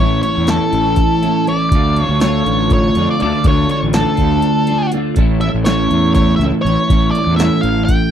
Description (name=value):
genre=psychedelic rock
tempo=243 BPM (eighths)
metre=7/8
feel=straight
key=unclear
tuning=A4 = 440 Hz
part: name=octave-fuzz lead guitar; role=melody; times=0.0-8.1 s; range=A4 to G5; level=-18 LUFS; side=equal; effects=distortion, slapback echo
part: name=twelve-string electric guitar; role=riff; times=0.0-8.1 s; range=A2 to F4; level=-16 LUFS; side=right 1 dB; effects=rotary speaker, double-tracked left and right
part: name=fuzz fingered electric bass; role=bass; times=0.0-7.9 s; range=A1 to F2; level=-18 LUFS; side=equal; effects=overdrive
part: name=electro analog drum machine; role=drums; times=0.2-8.0 s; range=hi-hat, kick drum, snare drum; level=-16 LUFS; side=equal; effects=none
room=little or no reverb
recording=dry, close 1970s-style studio recording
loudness=-12 LUFS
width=side -9 dB against mid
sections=0.0-8.1 A section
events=kick and snare drop out 4.4-5.2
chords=0.0 A; 1.7 Dm; 5.2 A